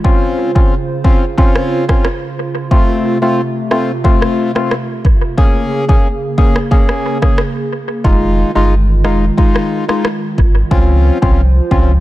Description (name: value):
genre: dancehall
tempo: 90 BPM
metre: 4/4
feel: straight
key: F minor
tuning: A4 = 439 Hz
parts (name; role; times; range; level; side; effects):
- percussive organ stab; accompaniment; 0.0-11.9 s; Ab3 to Ab4; -16 LUFS; left 2 dB; chorus, sidechain pumping
- hollow soft pad; sustained chords; 0.0-12.0 s; C3 to C5; -20 LUFS; right 1 dB; chorus, sidechain pumping
- afro-pop drum kit; drums; 0.0-11.9 s; kick drum, rim click; -13 LUFS; equal; analog delay
- warm sub bass; bass; 8.0-12.0 s; F1 to Db2; -12 LUFS; equal; none
room: light reverb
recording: echo-heavy mix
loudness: -11 LUFS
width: side -16 dB against mid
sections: 0.0-12.0 A section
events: none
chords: 0.0 Dbmaj7; 2.7 F; 5.4 Bbm7; 8.0 Fm7; 10.7 Dbmaj7